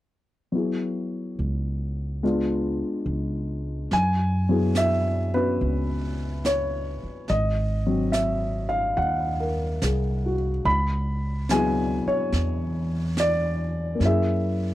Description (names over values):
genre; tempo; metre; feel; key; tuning
jazz ballad; 71 BPM; 4/4; swing 68% on 8ths; unclear; A4 = 442 Hz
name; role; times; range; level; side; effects
dark baby grand piano; accompaniment; 0.5-14.7 s; F#3 to B5; -25 LUFS; left 1 dB; none
upright bass; bass; 1.4-14.7 s; G#1 to F#2; -26 LUFS; right 1 dB; none
jazz brush drum kit; drums; 3.9-14.7 s; brushed snare drum, hi-hat, snare drum; -34 LUFS; right 2 dB; none
room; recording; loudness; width
little or no reverb; dry, close 1970s-style studio recording; -22 LUFS; side -15 dB against mid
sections
0.5-3.9 A section; 3.9-14.7 B section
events
none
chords
0.5 E69; 2.2 C#7b9; 3.9 F#sus2; 7.3 G#7; 10.7 C#m7; 14.0 F#7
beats
| 0.54 1.39 2.22 3.07 | 3.91 4.76 5.61 6.46 | 7.30 8.14 8.98 9.82 | 10.66 11.49 12.33 13.17 | 14.01